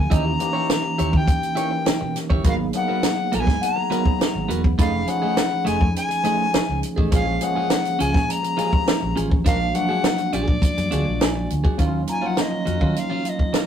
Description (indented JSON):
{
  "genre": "lush 1970s-style soul",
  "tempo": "103 BPM",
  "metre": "4/4",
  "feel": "straight",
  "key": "Eb minor",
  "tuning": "A4 = 440 Hz",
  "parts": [
    { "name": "bright reedy soprano recorder", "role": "melody", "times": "0.0-13.7 s", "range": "D5 to Bb5", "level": "-25 LUFS", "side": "left 3 dB", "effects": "none" },
    { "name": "barky tine electric piano", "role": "accompaniment", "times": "0.0-13.7 s", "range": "Fb3 to Bb4", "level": "-26 LUFS", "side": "equal", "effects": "fast stereo tremolo" },
    { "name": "clean electric guitar", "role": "riff", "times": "0.0-13.7 s", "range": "Gb3 to Eb5", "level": "-27 LUFS", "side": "right 3 dB", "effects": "warbly pitch drift" },
    { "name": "vintage muted fingered electric bass", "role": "bass", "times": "0.0-12.9 s", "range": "Fb1 to Eb3", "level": "-25 LUFS", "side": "equal", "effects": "none" },
    { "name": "compact cocktail drum kit", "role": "drums", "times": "0.1-13.7 s", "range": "hi-hat, kick drum, snare drum", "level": "-21 LUFS", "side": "equal", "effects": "none" },
    { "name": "large celesta", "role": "texture", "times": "3.6-13.7 s", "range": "Gb5 to Cb6", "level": "-33 LUFS", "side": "left 4 dB", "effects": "none" }
  ],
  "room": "moderate studio reverb, RT60 0.6 s",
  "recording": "rough rehearsal-room recording, tube saturation",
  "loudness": "-18 LUFS",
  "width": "side -9 dB against mid",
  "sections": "0.0-11.8 A section; 11.8-13.7 B section",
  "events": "none",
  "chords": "0.1 Eb7b9; 2.4 Abm9; 4.8 F7alt; 7.1 Bbm7; 9.5 Bb7b13; 11.8 Ebm9",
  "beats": "| 0.11 0.70 1.28 1.86 | 2.45 3.03 3.62 4.20 | 4.79 5.37 5.95 6.54 | 7.12 7.71 8.29 8.87 | 9.46 10.04 10.62 11.21 | 11.79 12.38 12.96 13.54"
}